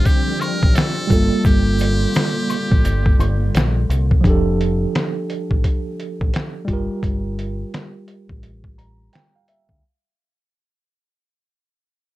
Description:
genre	lo-fi hip hop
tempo	86 BPM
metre	4/4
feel	swing 63% on 16ths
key	G minor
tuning	A4 = 444 Hz
part	trumpet with metal mute	melody	0.0-3.5 s	G4 to Bb4	-26 LUFS	equal	none
part	mellow tine electric piano	accompaniment	0.0-9.8 s	F3 to Bb5	-23 LUFS	right 2 dB	medium stereo tremolo, cassette tape
part	granular cloud pad	sustained chords	0.0-4.2 s	D3 to F4	-30 LUFS	left 2 dB	built-in reverb
part	deep dub fingered electric bass	bass	0.0-9.8 s	F1 to D2	-20 LUFS	equal	none
part	lo-fi sampler-style drum kit	drums	0.1-9.8 s	finger snaps, hi-hat, kick drum, snare drum	-18 LUFS	equal	none
part	egg shaker and woodblock	percussion	0.1-4.1 s	none	-32 LUFS	left 7 dB	none
room	light reverb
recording	dark, warm production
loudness	-16 LUFS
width	side -16 dB against mid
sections	0.0-4.2 A section; 4.2-9.8 B section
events	fade-out 4.2-9.8; tine electric piano fill 8.4-9.8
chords	0.0 F69; 1.1 Gm9; 4.2 F69; 6.7 Gm9

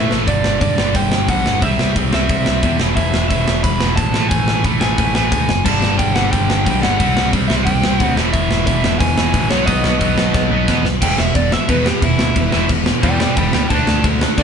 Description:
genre	punk rock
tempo	179 BPM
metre	4/4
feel	straight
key	unclear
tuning	A4 = 440 Hz
part	crunchy overdriven guitar	melody	0.0-14.4 s	E4 to B5	-21 LUFS	equal	none
part	distorted electric guitar	riff	0.0-14.4 s	E2 to D4	-21 LUFS	right 2 dB	overdrive
part	distorted electric guitar	riff	0.0-0.3, 5.6-14.4 s	E2 to D4	-22 LUFS	equal	overdrive
part	modern bright picked electric bass	bass	0.0-14.4 s	E1 to D3	-20 LUFS	left 1 dB	none
part	tight metal drum kit	drums	0.1-14.4 s	crash cymbal, hi-hat, kick drum, snare drum	-17 LUFS	equal	none
room	light reverb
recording	band playing live in one room, nothing above 10.9 kHz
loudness	-13 LUFS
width	side -7 dB against mid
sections	0.3-11.0 A section; 11.0-14.4 B section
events	drum fill 0.0, 10.4-11.0; overdriven electric guitar solo 11.0-14.4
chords	0.3 G5; 1.6 C; 2.8 E5; 4.2 A5; 5.7 G5; 7.0 C5; 8.2 E; 9.5 B; 11.0 E5; 13.7 D5

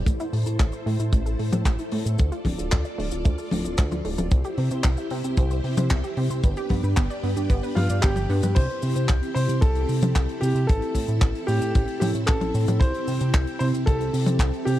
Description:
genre	italo disco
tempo	113 BPM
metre	4/4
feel	straight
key	C major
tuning	A4 = 440 Hz
part	string machine, full ensemble	sustained chords	0.0-14.8 s	C4 to D5	-31 LUFS	equal	ensemble chorus
part	analog pluck	arpeggios	0.0-8.6 s	A3 to E5	-33 LUFS	right 2 dB	chorus, tape echo
part	chorused synth bass	bass	0.0-14.8 s	D1 to C3	-25 LUFS	equal	none
part	kick drum	drums	0.1-14.5 s	none	-20 LUFS	equal	none
part	tight funk drum kit	drums	0.1-14.8 s	cabasa, crash cymbal, handclaps, hi-hat, toms	-30 LUFS	left 2 dB	none
part	bright baby grand piano	melody	7.8-14.8 s	F4 to C5	-29 LUFS	equal	vintage 12-bit sampler grit, tape echo
room	small room ambience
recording	dry, close 1970s-style studio recording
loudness	-21 LUFS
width	side -13 dB against mid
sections	0.1-8.6 A section; 8.6-14.8 B section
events	filter sweep on synth arpeggio sound 0.1-8.6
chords	0.1 Am; 2.2 Dm; 4.3 C; 6.4 G; 8.6 C; 10.7 Am; 12.8 C

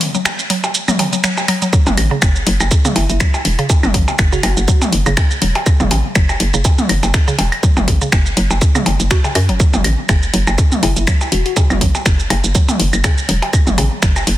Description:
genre	minimal techno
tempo	122 BPM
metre	4/4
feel	swing 56% on 16ths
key	F# minor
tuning	A4 = 441 Hz
part	garage drum kit	drums	0.0-14.4 s	finger snaps, hi-hat, shaker	-19 LUFS	equal	studio reverb, soft clipping on snare
part	mallet-like synth pluck	riff	0.1-14.1 s	C#3 to F#4	-23 LUFS	equal	chorus, cassette tape, sidechain pumping, tape echo
part	electronic claves, percussion blips and toms	percussion	0.3-14.2 s	none	-20 LUFS	equal	studio reverb, digital delay
part	electronic kick drum	drums	1.7-14.1 s	none	-13 LUFS	equal	studio reverb
part	hollow knocking FM bass	bass	1.9-14.4 s	E1 to F#2	-16 LUFS	equal	sidechain pumping
part	bell-like FM electric piano	melody	3.0-4.8, 10.8-11.5 s	E4 to F#4	-25 LUFS	left 3 dB	chorus, phaser, digital delay
room	light reverb, digital ambience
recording	dense, heavily limited modern master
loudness	-12 LUFS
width	side -14 dB against mid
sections	0.0-14.4 A section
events	break 0.0-1.7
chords	none

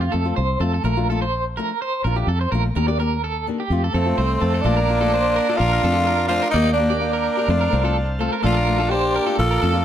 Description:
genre	highlife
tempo	126 BPM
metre	4/4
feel	straight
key	Bb major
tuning	A4 = 440 Hz
part	nylon-string guitar	accompaniment	0.0-9.8 s	Eb3 to G4	-26 LUFS	left 6 dB	none
part	electric guitar at the edge of break-up	arpeggios	0.0-9.8 s	F4 to D5	-25 LUFS	right 4 dB	tremolo, slapback echo
part	fingered electric bass	bass	0.0-9.8 s	Bb1 to F2	-22 LUFS	equal	none
part	growling tenor saxophone	melody	3.9-9.8 s	C4 to A4	-21 LUFS	left 1 dB	none
part	warm alto saxophone	second line	4.0-9.8 s	A3 to F4	-26 LUFS	right 4 dB	none
part	overdriven combo organ	sustained chords	4.6-9.8 s	Bb3 to A5	-32 LUFS	left 2 dB	none
room	light reverb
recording	none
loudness	-18 LUFS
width	side -10 dB against mid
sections	0.0-4.7 A section; 4.7-9.8 B section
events	none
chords	0.0 F; 0.8 Bbmaj7; 2.7 Ebmaj7; 3.7 F; 4.7 Bbmaj7; 6.5 Ebmaj7; 7.5 F; 8.4 Bbmaj7

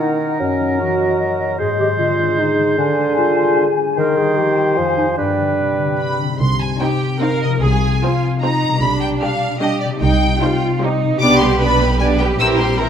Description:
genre	cinematic, playful, whimsical film cue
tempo	151 BPM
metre	3/4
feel	straight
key	C minor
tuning	A4 = 440 Hz
part	dark clarinet	second line	0.0-6.0 s	C#4 to Bb4	-20 LUFS	equal	none
part	mellow hollow flute section	second line	0.0-6.2 s	D#5 to Ab5	-24 LUFS	left 7 dB	none
part	warm oboe	second line	0.0-6.2 s	A#4 to C5	-24 LUFS	right 2 dB	none
part	warm bassoon	accompaniment	0.0-6.2 s	D3 to Ab3	-20 LUFS	right 3 dB	none
part	concert harp	arpeggios	0.0-12.9 s	F2 to C5	-21 LUFS	left 5 dB	none
part	rich studio violin section	melody	6.0-12.9 s	D5 to E6	-21 LUFS	left 1 dB	none
part	clear studio double bass section	bass	6.4-12.9 s	Bb1 to C2	-19 LUFS	right 2 dB	none
part	rich studio violin section	second line	6.8-12.9 s	Eb4 to D5	-24 LUFS	right 1 dB	none
part	rich studio viola section	accompaniment	6.8-12.9 s	E3 to F4	-21 LUFS	right 1 dB	none
part	rich studio cello section	bass	6.8-12.9 s	D4 to B4	-21 LUFS	right 2 dB	none
room	wet recital hall reverb, RT60 1.6 s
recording	none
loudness	-14 LUFS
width	side -8 dB against mid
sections	0.0-6.4 A section; 6.4-12.9 B section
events	none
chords	0.4 D#m/F#; 1.6 Ab; 2.8 Dm7b5; 4.0 Cm/Eb; 4.8 Dm7b5/F; 5.2 G; 6.4 Cm; 7.6 Fm/C; 8.8 G7/B; 10.0 Cm; 11.2 G/B; 12.4 C7/Bb

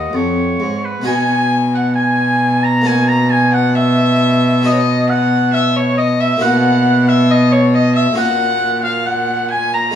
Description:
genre	classical, baroque-style sonata movement with continuo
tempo	67 BPM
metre	4/4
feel	straight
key	B major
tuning	A4 = 440 Hz
part	warm violin	melody	0.0-10.0 s	C#5 to A#5	-19 LUFS	left 7 dB	none
part	clear oboe	second line	0.0-10.0 s	B4 to A#5	-18 LUFS	right 4 dB	none
part	harpsichord	accompaniment	0.0-10.0 s	E#2 to A#4	-23 LUFS	left 1 dB	none
part	rich cello	bass	0.0-10.0 s	D#2 to B2	-15 LUFS	equal	none
room	moderate stone room reverb, RT60 1.3 s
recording	small room ambience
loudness	-12 LUFS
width	side -9 dB against mid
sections	0.0-1.1 A section; 1.1-10.0 A section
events	none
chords	0.0 F#; 1.1 B; 2.9 F#7/B; 4.7 B; 6.4 F#7/B; 8.2 F#/A#

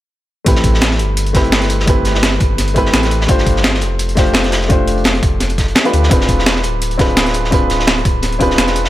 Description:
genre	liquid drum and bass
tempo	170 BPM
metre	4/4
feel	swing 54% on 16ths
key	A minor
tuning	A4 = 440 Hz
part	dark baby grand piano	accompaniment	0.4-8.9 s	A3 to C5	-17 LUFS	left 1 dB	digital delay
part	warm sub bass	bass	0.5-8.9 s	D1 to D2	-18 LUFS	equal	none
part	breakbeat sampler-style drum kit	drums	0.5-8.8 s	hi-hat, snare drum	-17 LUFS	equal	none
part	crunchy breakbeat drum kit	drums	0.5-8.9 s	hi-hat, snare drum	-22 LUFS	equal	high-pass filter on hats, high-pass filter on snare, high-pass filter on room
part	electronic kick drum	drums	0.5-8.5 s	none	-15 LUFS	equal	none
room	light reverb, small room ambience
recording	none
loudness	-11 LUFS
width	side -14 dB against mid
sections	0.5-8.9 A section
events	none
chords	0.5 Am9; 3.3 G9sus4; 6.1 E7b9b13

